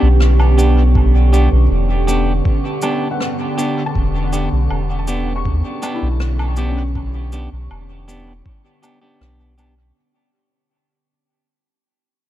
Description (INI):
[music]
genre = ambient dub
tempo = 80 BPM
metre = 4/4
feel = straight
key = E dorian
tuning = A4 = 440 Hz
[part]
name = deep dark ambient pad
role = sustained chords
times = 0.0-10.0 s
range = D3 to G4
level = -22 LUFS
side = right 2 dB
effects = chorus, built-in reverb
[part]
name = felt-muted upright piano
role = arpeggios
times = 0.0-10.0 s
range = C#4 to C#6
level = -32 LUFS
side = left 5 dB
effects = tape echo
[part]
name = clean electric guitar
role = stabs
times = 0.0-9.7 s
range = B3 to G4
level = -23 LUFS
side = right 1 dB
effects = dub echo
[part]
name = soft dub sub bass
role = bass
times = 0.0-9.9 s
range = E1 to E2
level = -15 LUFS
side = equal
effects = none
[part]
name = wind-like tuned noise texture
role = texture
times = 0.0-10.0 s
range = C#4 to C#6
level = -31 LUFS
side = right 4 dB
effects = built-in reverb
[part]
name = rim click, woodblock and shaker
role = drums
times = 0.2-9.7 s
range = none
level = -30 LUFS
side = left 1 dB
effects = dub echo
[part]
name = electronic kick drum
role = drums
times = 1.0-8.6 s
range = none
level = -18 LUFS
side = equal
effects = none
[sound]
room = small room ambience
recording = dark, warm production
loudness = -14 LUFS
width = side -13 dB against mid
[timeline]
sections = 0.0-10.0 A section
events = fade-out 2.0-10.0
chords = 0.0 Em7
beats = 0.21 | 0.96 1.71 2.46 3.21 | 3.96 4.71 5.46 6.21 | 6.96 7.71 8.46 9.21